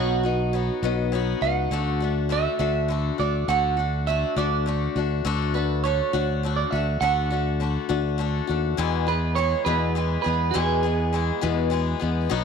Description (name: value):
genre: folk rock and heartland rock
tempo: 68 BPM (dotted quarters)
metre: 6/8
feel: straight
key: E mixolydian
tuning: A4 = 436 Hz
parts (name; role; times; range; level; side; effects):
- clean electric guitar; melody; 0.0-12.0 s; F#4 to F#5; -26 LUFS; right 11 dB; lush chorus
- picked swing-style acoustic guitar; accompaniment; 0.0-12.4 s; E2 to G#4; -26 LUFS; left 11 dB; none
- fingered electric bass; bass; 0.0-12.4 s; B1 to E2; -25 LUFS; equal; none
room: light reverb, studio ambience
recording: 1960s-style stereo with parts hard left and right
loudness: -21 LUFS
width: side -6 dB against mid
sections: 0.0-8.8 A section; 8.8-12.4 A section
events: none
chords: 0.0 B; 1.7 D; 8.8 E